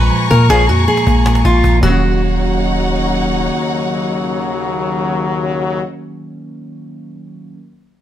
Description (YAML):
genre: hip hop, trap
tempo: 158 BPM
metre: 4/4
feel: half-time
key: Eb minor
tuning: A4 = 441 Hz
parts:
  - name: fingerpicked steel-string acoustic guitar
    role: melody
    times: 0.0-3.1 s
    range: F4 to Cb5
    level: -17 LUFS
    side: equal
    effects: digital delay
  - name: muted felt-like synth keys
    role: accompaniment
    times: 0.0-7.6 s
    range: Bb2 to Db4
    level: -20 LUFS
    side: right 1 dB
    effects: chorus
  - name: warm symphonic string section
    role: sustained chords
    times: 0.0-5.8 s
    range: Eb4 to Db6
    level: -22 LUFS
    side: left 1 dB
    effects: none
  - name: warm 808-style bass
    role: bass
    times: 0.0-3.5 s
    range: Eb1 to Bb2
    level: -15 LUFS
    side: equal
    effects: none
  - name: cajon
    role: drums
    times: 0.1-1.9 s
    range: none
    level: -24 LUFS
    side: equal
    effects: none
  - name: bright brass ensemble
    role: stabs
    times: 0.5-5.8 s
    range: Eb2 to Gb3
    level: -20 LUFS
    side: left 3 dB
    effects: none
room: light reverb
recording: none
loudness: -12 LUFS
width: side -11 dB against mid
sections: 0.0-2.0 A section; 2.0-5.1 B section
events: none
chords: 0.0 Bbm7; 1.8 Ebm7